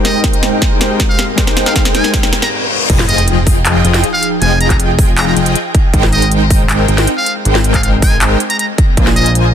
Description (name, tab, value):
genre	future bass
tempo	158 BPM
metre	4/4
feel	half-time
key	F minor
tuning	A4 = 440 Hz
part	trumpet with metal mute	melody	0.0-9.3 s	Eb5 to Bb5	-19 LUFS	equal	sidechain pumping, ping-pong delay
part	glassy digital keys	accompaniment	0.0-2.9 s	Ab3 to C5	-25 LUFS	left 3 dB	chorus, sidechain pumping, ping-pong delay
part	airy breathy pad	sustained chords	0.0-9.5 s	Ab2 to G5	-24 LUFS	right 1 dB	chorus, phaser, sidechain pumping
part	big bright polysynth	riff	0.0-9.5 s	F3 to Ab5	-16 LUFS	left 1 dB	chorus, sidechain pumping
part	trap drum kit	drums	0.0-9.4 s	crash cymbal, handclaps, hi-hat, snare drum	-17 LUFS	equal	high-pass filter on snare, high-pass filter on hats, high-pass filter on cymbals
part	riser, reverse cymbal and sub drop	sound effects	0.6-4.4 s	none	-23 LUFS	left 2 dB	none
part	electronic kick drum	drums	0.2-9.1 s	none	-13 LUFS	equal	overdrive
part	fat analog bass	bass	2.9-9.5 s	F1 to Bb1	-14 LUFS	equal	sidechain pumping
room	light reverb, digital ambience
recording	dense, heavily limited modern master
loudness	-9 LUFS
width	side -9 dB against mid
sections	0.0-2.9 A section; 2.9-9.5 B section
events	build-up 0.0-2.9; drum fill 0.0-2.5; filter sweep on analog polysynth 0.0-2.9; reverse cymbal 2.1-2.9; drop 2.9-9.5; impact 2.9-4.4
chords	0.0 Abmaj9; 2.9 Fm9; 5.9 Abmaj9; 9.0 Bb7sus4